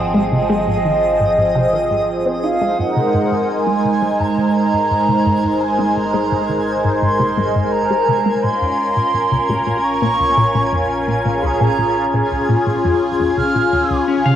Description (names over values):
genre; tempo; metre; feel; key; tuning
ambient, sequencer-driven space music; 85 BPM; 4/4; straight; unclear; A4 = 440 Hz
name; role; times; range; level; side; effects
wooden flute; melody; 0.0-14.0 s; Eb5 to F6; -19 LUFS; right 2 dB; cassette tape, ping-pong delay
phased analog pad; sustained chords; 0.0-14.4 s; Db3 to C5; -18 LUFS; equal; phaser, chorus
analog drone; bass; 0.0-14.4 s; Ab1 to Db2; -35 LUFS; equal; chorus
twinkling granular texture; texture; 0.0-14.4 s; Eb5 to Ab5; -27 LUFS; right 1 dB; built-in reverb
resonant blip pluck; riff; 0.1-14.4 s; Db2 to Eb4; -20 LUFS; left 1 dB; phaser, ping-pong delay
clean electric guitar; arpeggios; 14.1-14.3 s; Db4 to F5; -18 LUFS; left 6 dB; auto-pan
room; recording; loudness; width
wet studio reverb, RT60 0.5 s; home recording on cassette; -14 LUFS; side -10 dB against mid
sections
0.0-2.8 A section; 2.8-14.4 B section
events
none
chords
0.0 Ab; 2.8 Abadd9; 8.4 Bbm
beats
0.67 1.38 2.08 | 2.79 3.49 4.20 4.91 | 5.61 6.32 7.02 7.73 | 8.44 9.14 9.85 10.55 | 11.26 11.96 12.67 13.38 | 14.08